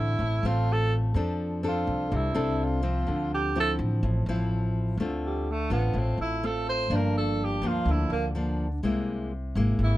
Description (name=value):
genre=bossa nova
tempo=125 BPM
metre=4/4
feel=straight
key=D minor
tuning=A4 = 441 Hz
part: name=breathy tenor saxophone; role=melody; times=0.0-10.0 s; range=G3 to C5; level=-29 LUFS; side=right 3 dB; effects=none
part: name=nylon-string guitar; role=accompaniment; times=0.0-10.0 s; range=G2 to A4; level=-29 LUFS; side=left 1 dB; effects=none
part: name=upright bass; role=bass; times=0.0-10.0 s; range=G1 to F2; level=-28 LUFS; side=equal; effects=none
room=little or no reverb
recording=close, detailed microphones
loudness=-25 LUFS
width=side -16 dB against mid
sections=0.0-5.0 A section; 5.0-10.0 A section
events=tenor saxophone solo 0.0-10.0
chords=0.0 Dm7; 1.2 F6; 3.1 Dm9; 5.0 Dm7; 6.9 Gm7; 8.8 Caug7